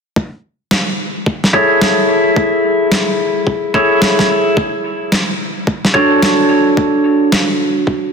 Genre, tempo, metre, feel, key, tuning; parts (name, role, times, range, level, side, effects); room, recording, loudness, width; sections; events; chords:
glitch hop; 109 BPM; 4/4; swing 62% on 16ths; A4 = 440 Hz
electronic kick drum; drums; 0.2-8.0 s; -18 LUFS; equal; high-pass filter on kick, small room ambience
electronic snare drum; drums; 0.7-7.5 s; -17 LUFS; equal; small room ambience
semi-hollow electric guitar; stabs; 1.5-8.1 s; D4 to C#5; -12 LUFS; equal; vintage 12-bit sampler grit, sidechain pumping, low-pass filter, digital delay
wet lush hall reverb, RT60 2.7 s; dense, heavily limited modern master; -11 LUFS; side -5 dB against mid
0.2-8.1 A section
filter sweep on clean electric guitar 0.2-8.1
0.2 Amaj7/E; 4.6 Dmaj7